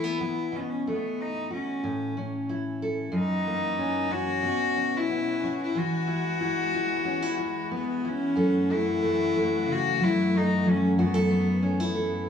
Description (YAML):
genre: acoustic folk-pop ballad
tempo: 92 BPM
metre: 4/4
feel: straight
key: F# dorian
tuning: A4 = 441 Hz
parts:
  - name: rich cello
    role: melody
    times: 0.0-11.9 s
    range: B3 to F#4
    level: -28 LUFS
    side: left 3 dB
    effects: none
  - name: fingerpicked steel-string acoustic guitar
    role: accompaniment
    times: 0.0-12.3 s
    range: F#2 to A4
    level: -27 LUFS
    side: equal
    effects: none
  - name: warm chamber string section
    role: sustained chords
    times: 3.1-12.3 s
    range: E2 to F#4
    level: -34 LUFS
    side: left 3 dB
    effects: none
room: moderate large studio reverb, RT60 1.2 s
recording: band playing live in one room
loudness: -24 LUFS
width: side -8 dB against mid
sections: 0.0-8.4 A section; 8.4-12.3 B section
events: none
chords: 0.0 E5; 0.5 B7sus4; 1.8 A; 3.1 F#7; 4.4 Bsus2; 5.7 Eadd9; 8.4 F#m7; 11.0 B7sus4/F#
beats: | 0.51 1.17 1.82 2.47 | 3.12 3.78 4.43 5.08 | 5.74 6.39 7.05 7.71 | 8.37 9.02 9.68 10.33 | 10.98 11.63 12.28